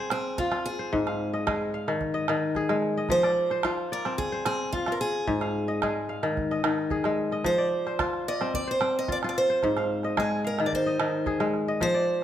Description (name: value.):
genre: west african traditional, West African string and xylophone music.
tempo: 110 BPM.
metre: 4/4.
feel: straight.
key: unclear.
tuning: A4 = 441 Hz.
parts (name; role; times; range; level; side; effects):
picked old ladder-braced acoustic guitar; melody; 0.0-12.2 s; F4 to Eb5; -28 LUFS; right 2 dB; none.
kora; arpeggios; 0.0-12.2 s; Ab2 to F5; -27 LUFS; left 2 dB; none.
calabash; percussion; 0.1-11.9 s; none; -33 LUFS; right 5 dB; none.
room: moderate recital hall reverb, RT60 1.6 s.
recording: none.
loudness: -24 LUFS.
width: side -10 dB against mid.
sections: 0.0-12.2 A section.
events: none.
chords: 0.0 F5; 0.9 Ab; 3.1 F5; 5.3 Ab5; 7.5 F5; 9.6 Ab.